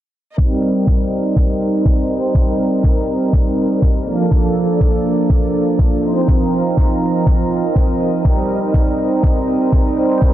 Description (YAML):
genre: nu-disco, nu disco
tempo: 122 BPM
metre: 4/4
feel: swing 55% on 16ths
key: C dorian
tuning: A4 = 439 Hz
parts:
  - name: warm analog pad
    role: accompaniment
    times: 0.4-10.3 s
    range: F3 to C5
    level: -17 LUFS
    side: right 1 dB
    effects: chorus, vintage 12-bit sampler grit, slapback echo
  - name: warm chamber violin section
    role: sustained chords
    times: 0.4-10.3 s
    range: Bb3 to Bb5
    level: -24 LUFS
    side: equal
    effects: sidechain pumping
  - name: electronic kick drum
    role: drums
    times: 0.4-10.3 s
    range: none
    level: -15 LUFS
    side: equal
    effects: none
  - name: electronic hi-hat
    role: drums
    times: 0.6-10.1 s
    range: none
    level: -57 LUFS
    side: left 1 dB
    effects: none
room: light reverb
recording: dense, heavily limited modern master, low-pass filter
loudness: -13 LUFS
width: side -12 dB against mid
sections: 0.4-10.3 A section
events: filter sweep 0.4-10.3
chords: 0.4 Cm7; 4.1 Bbmaj7; 6.0 F7sus4; 8.2 Cm7